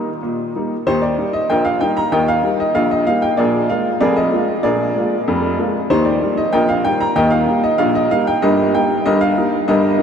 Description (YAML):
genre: ragtime piano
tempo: 95 BPM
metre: 2/4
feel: straight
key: Eb major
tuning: A4 = 443 Hz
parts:
  - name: clear upright piano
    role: solo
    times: 0.0-10.0 s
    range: F1 to Eb6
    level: -14 LUFS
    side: equal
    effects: none
room: wet huge ambient reverb, RT60 7.7 s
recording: in a vast, echoing space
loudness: -14 LUFS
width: side -7 dB against mid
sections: 0.9-10.0 A section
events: none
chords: 0.0 Eb; 3.4 Bb7; 5.9 Eb; 8.4 Eb/G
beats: 0.22 | 0.86 1.49 | 2.12 2.76 | 3.39 4.01 | 4.65 5.28 | 5.91 6.53 | 7.16 7.79 | 8.42 9.04 | 9.67